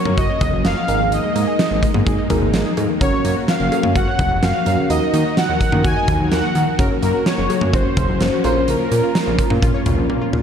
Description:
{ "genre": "synth-pop", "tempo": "127 BPM", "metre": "4/4", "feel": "straight", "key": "unclear", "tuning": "A4 = 440 Hz", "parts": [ { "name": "analog synth brass", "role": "melody", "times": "0.0-10.1 s", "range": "Bb4 to Ab5", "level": "-22 LUFS", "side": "equal", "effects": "chorus, analog delay" }, { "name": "FM electric piano", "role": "accompaniment", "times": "0.0-10.3 s", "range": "Db4 to Bb4", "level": "-25 LUFS", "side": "right 2 dB", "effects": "chorus, phaser" }, { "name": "string machine, violas", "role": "sustained chords", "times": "0.0-10.4 s", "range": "Eb3 to Bb4", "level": "-25 LUFS", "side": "equal", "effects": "ensemble chorus" }, { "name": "analog pluck", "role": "arpeggios", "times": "0.1-10.3 s", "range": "Db3 to Eb5", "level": "-26 LUFS", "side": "left 4 dB", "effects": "chorus, analog delay" }, { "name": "fat analog bass", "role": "bass", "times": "0.1-10.4 s", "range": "Gb1 to Eb3", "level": "-21 LUFS", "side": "equal", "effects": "none" }, { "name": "huge arena drum kit", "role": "drums", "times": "0.1-10.4 s", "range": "cowbell, hi-hat, kick drum, snare drum, toms", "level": "-20 LUFS", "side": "equal", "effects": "none" } ], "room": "moderate lush hall reverb, RT60 1.9 s, small room ambience", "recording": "dark, warm production", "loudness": "-15 LUFS", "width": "side -8 dB against mid", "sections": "0.0-10.4 A section", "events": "drum fill 10.1-10.4", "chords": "0.0 Gb; 0.9 Absus2; 3.0 Gb; 4.9 Ebm; 6.8 Gb; 8.4 Bbm" }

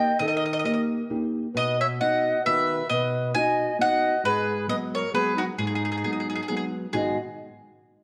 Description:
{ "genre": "italian folk, Italian serenade", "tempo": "134 BPM", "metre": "3/4", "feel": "swing 54% on 8ths", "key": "G# minor", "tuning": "A4 = 441 Hz", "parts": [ { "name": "bowl-back mandolin", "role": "melody", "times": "0.0-7.2 s", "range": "F#4 to G#5", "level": "-28 LUFS", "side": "equal", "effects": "none" }, { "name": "bright reedy bansuri", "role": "second line", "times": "0.0-7.2 s", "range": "D#4 to D#5", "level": "-31 LUFS", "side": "equal", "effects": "none" }, { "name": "nylon-string guitar", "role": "accompaniment", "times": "0.0-7.2 s", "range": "G#2 to G4", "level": "-31 LUFS", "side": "equal", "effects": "none" } ], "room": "moderate recital hall reverb, RT60 1.6 s", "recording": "worn, warbling old tape, cassette tape, warbly pitch drift", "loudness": "-25 LUFS", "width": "mono", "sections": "0.0-6.9 A section; 6.9-8.0 B section", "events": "none", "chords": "0.0 D#; 1.5 B; 4.2 G#m7" }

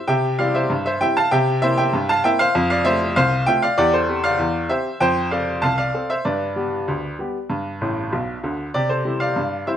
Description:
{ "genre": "ragtime piano", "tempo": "97 BPM", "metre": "2/4", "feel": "straight", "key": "C major", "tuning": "A4 = 441 Hz", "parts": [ { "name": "clear upright piano", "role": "solo", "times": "0.0-9.8 s", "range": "A1 to A5", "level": "-18 LUFS", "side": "equal", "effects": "none" } ], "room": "moderate studio reverb, RT60 1.0 s", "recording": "none", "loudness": "-18 LUFS", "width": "side -9 dB against mid", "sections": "0.0-9.8 A section", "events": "upright piano fill 7.8-8.7", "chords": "0.0 C; 1.3 C7; 2.6 F; 3.8 C/E; 5.0 F; 6.3 G; 8.7 C" }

